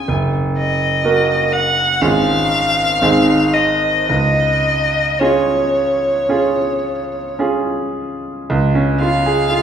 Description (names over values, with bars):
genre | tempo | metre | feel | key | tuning
classical, romantic duo for violin and grand piano | 53-63 BPM | 4/4 | rubato | Db major | A4 = 439 Hz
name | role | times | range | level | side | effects
rich violin | melody | 0.0-9.6 s | Db5 to Gb5 | -16 LUFS | left 1 dB | none
bright grand piano | accompaniment | 0.0-9.6 s | Gb1 to Bb4 | -16 LUFS | right 2 dB | none
room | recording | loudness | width
wet recital hall reverb, RT60 1.6 s | recorded in a church or concert hall | -14 LUFS | side -8 dB against mid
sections
0.0-8.5 A section; 8.5-9.6 B section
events
none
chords
0.1 Ebm/Gb; 2.0 Db/Ab; 3.0 Ab; 4.1 Db